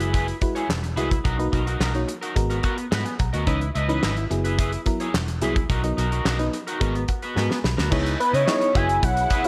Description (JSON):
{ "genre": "early-eighties boogie funk", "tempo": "108 BPM", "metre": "4/4", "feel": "straight", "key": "C# dorian", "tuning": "A4 = 439 Hz", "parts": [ { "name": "FM electric piano", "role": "accompaniment", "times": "0.0-9.5 s", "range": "E3 to B5", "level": "-31 LUFS", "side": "equal", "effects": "chorus" }, { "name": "electric guitar at the edge of break-up", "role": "riff", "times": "0.0-9.5 s", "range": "B3 to D#5", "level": "-31 LUFS", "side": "equal", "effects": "analog chorus" }, { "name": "vintage muted fingered electric bass", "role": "bass", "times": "0.0-9.3 s", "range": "E1 to C#3", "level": "-28 LUFS", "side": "equal", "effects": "none" }, { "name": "damped 70s drum kit", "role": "drums", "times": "0.0-9.5 s", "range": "crash cymbal, handclaps, hi-hat, kick drum, snare drum", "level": "-28 LUFS", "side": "equal", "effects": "gated reverb" }, { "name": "rich studio string section", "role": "sustained chords", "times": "7.9-9.5 s", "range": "B2 to E4", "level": "-36 LUFS", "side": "equal", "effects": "none" }, { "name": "fat analog lead", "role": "melody", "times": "8.2-9.5 s", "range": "B4 to G#5", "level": "-23 LUFS", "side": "equal", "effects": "chorus" } ], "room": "light reverb", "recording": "none", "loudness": "-23 LUFS", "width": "mono", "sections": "0.0-7.9 A section; 7.9-9.5 B section", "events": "FM electric piano fill 2.6-3.5, 6.8-7.9; drum fill 7.4-7.9", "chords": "0.0 F#9sus4; 1.3 Bmaj7; 2.4 G#m9; 3.5 C#m9; 4.3 F#9sus4; 5.7 Bmaj7; 6.8 G#m9; 7.9 C#m9; 8.8 F#9sus4" }